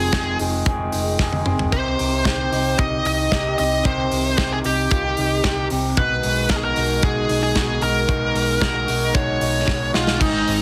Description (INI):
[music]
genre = jangly indie pop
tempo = 113 BPM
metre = 4/4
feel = straight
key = unclear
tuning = A4 = 442 Hz
[part]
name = bluesy overdriven lead guitar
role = melody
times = 0.0-10.6 s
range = Eb4 to Eb5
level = -24 LUFS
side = equal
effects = distortion
[part]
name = electric guitar through a small old amp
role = accompaniment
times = 0.0-10.6 s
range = F2 to Ab4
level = -29 LUFS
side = equal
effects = none
[part]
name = electric guitar through a small old amp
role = arpeggios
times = 0.0-10.6 s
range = Ab2 to Ab4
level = -29 LUFS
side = equal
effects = ensemble chorus
[part]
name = picked electric bass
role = bass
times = 0.0-10.6 s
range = F1 to C2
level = -28 LUFS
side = equal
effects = none
[part]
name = modern studio drum kit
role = drums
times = 0.1-10.6 s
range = crash cymbal, hi-hat, kick drum, snare drum, toms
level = -26 LUFS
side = equal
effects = none
[sound]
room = light reverb, small room ambience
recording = heavily compressed radio sound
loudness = -20 LUFS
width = mono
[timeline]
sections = 0.0-10.2 A section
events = drum fill 1.2-1.7, 9.7-10.2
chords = 0.0 Fm7; 1.7 Cm; 6.0 B6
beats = 0.13 0.67 1.20 | 1.73 2.26 2.79 3.32 | 3.85 4.38 4.91 5.44 | 5.97 6.50 7.03 7.56 | 8.09 8.62 9.15 9.68 | 10.21